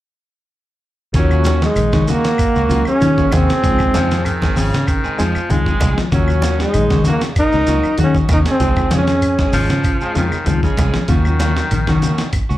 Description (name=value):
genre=afrobeat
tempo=97 BPM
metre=4/4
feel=swing 53% on 16ths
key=Eb dorian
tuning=A4 = 440 Hz
part: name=barky reed electric piano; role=accompaniment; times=1.1-11.5 s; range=Gb3 to Ab4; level=-26 LUFS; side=left 2 dB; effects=fast tremolo, plate reverb, slapback echo
part: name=fingered electric bass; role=bass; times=1.1-12.6 s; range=Ab1 to Eb3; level=-17 LUFS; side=equal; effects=none
part: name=dusty soul sampler-style drum kit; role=drums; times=1.1-12.5 s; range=hi-hat, kick drum, snare drum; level=-20 LUFS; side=equal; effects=none
part: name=congas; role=percussion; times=1.1-12.5 s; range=none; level=-26 LUFS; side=right 1 dB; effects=none
part: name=shekere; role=percussion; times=1.1-12.6 s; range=none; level=-26 LUFS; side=right 1 dB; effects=none
part: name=clear trombone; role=melody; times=1.2-9.8 s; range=Gb3 to Eb4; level=-18 LUFS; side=equal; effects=plate reverb, tape echo
part: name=bright alto saxophone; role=second line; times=1.2-9.8 s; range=Db4 to Bb4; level=-28 LUFS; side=right 3 dB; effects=plate reverb, slapback echo
part: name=semi-hollow electric guitar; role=arpeggios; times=1.2-12.3 s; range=C3 to C4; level=-25 LUFS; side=left 6 dB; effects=wide subtle chorus, tape echo
part: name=electric guitar at the edge of break-up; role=stabs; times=1.2-12.6 s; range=Eb3 to Ab4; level=-27 LUFS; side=right 6 dB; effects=plate reverb, slapback echo
part: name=claves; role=percussion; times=1.3-12.5 s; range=none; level=-34 LUFS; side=left 2 dB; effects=slapback echo
part: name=breathy baritone saxophone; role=second line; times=3.9-12.3 s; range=Db3 to Ab3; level=-23 LUFS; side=left 2 dB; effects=plate reverb, slapback echo
room=light reverb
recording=live gig heard through the venue's PA, club reverb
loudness=-13 LUFS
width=side -14 dB against mid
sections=1.1-12.6 A section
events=none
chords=1.1 Ebm7; 3.6 Dbmaj7; 6.1 Ebm7; 8.6 Dbmaj7; 11.1 Ebm7